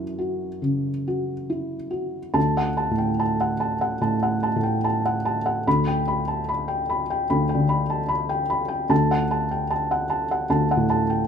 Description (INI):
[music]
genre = neoclassical minimalist piano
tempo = 74 BPM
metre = 4/4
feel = rubato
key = D major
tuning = A4 = 440 Hz
[part]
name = felt-muted upright piano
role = solo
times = 0.0-11.3 s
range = D2 to B5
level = -21 LUFS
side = equal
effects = none
[sound]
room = moderate stone room reverb, RT60 1.0 s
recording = band playing live in one room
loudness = -21 LUFS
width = side -7 dB against mid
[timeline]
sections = 0.0-2.4 A section; 2.4-11.3 B section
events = none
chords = 0.0 F#5; 2.4 D; 5.7 Gadd9/D; 8.9 F#m/D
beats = 0.64 1.50 | 2.36 3.20 4.03 4.84 | 5.66 6.49 7.30 8.10 | 8.90 9.71 10.51